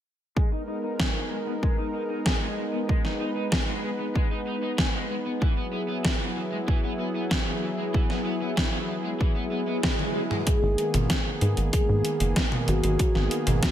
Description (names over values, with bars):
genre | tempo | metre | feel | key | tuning
synthwave | 95 BPM | 4/4 | straight | G# minor | A4 = 440 Hz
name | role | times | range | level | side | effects
warm analog pad | sustained chords | 0.4-13.7 s | D#3 to B4 | -30 LUFS | right 1 dB | chorus, vintage 12-bit sampler grit, sidechain pumping
crunchy overdriven guitar | riff | 0.4-10.4 s | E3 to G#4 | -34 LUFS | left 3 dB | wide subtle chorus, low-pass filter, ping-pong delay
electronic kick drum | drums | 0.4-13.7 s | none | -26 LUFS | equal | none
gated 80s digital drum machine | drums | 1.0-13.7 s | hi-hat, snare drum, toms | -28 LUFS | equal | gated reverb, gated reverb snare, overdrive
swell | sound effects | 9.5-10.5 s | none | -34 LUFS | right 2 dB | none
soft octave-layered synth lead | melody | 10.5-13.7 s | F#4 to G#4 | -29 LUFS | left 2 dB | chorus, tremolo, digital delay
tight sequencer bass | bass | 10.6-13.6 s | F#1 to G#2 | -24 LUFS | equal | none
room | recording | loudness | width
light reverb | none | -24 LUFS | side -11 dB against mid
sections
0.4-10.5 A section; 10.5-13.7 B section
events
filter sweep on overdriven electric guitar 0.4-10.5; swell 9.5-10.5; drum fill 9.8-10.5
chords
0.4 G#madd9; 5.4 Eadd9; 10.5 G#madd9